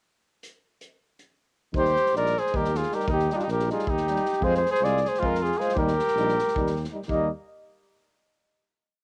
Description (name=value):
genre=balkan folk, Balkan brass band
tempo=315 BPM (eighths)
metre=7/8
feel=straight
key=Eb major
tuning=A4 = 440 Hz
part: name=unplugged drum kit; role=percussion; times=0.4-7.3 s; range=hi-hat, kick drum, snare drum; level=-37 LUFS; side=equal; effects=none
part: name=clear trombone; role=accompaniment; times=1.7-7.3 s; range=Eb4 to F4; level=-38 LUFS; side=equal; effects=cassette tape, plate reverb
part: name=warm euphonium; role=accompaniment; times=1.7-7.3 s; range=G3 to Ab3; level=-38 LUFS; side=equal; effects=cassette tape
part: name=mellow tuba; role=bass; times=1.7-7.3 s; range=Bb1 to F2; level=-32 LUFS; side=equal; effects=transformer saturation
part: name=dark cornet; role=melody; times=1.8-7.3 s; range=F4 to Eb5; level=-27 LUFS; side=equal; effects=cassette tape, plate reverb
part: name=warm trumpet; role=second line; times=1.8-7.3 s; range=Bb3 to Bb4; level=-33 LUFS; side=equal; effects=cassette tape, plate reverb
room=moderate booth ambience, RT60 0.3 s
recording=home recording on cassette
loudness=-25 LUFS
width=mono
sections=0.4-1.7 pickup bar; 1.7-7.1 A section; 7.1-8.4 final chord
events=none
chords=0.4 N.C.; 1.7 Eb; 4.4 Fm; 5.8 Eb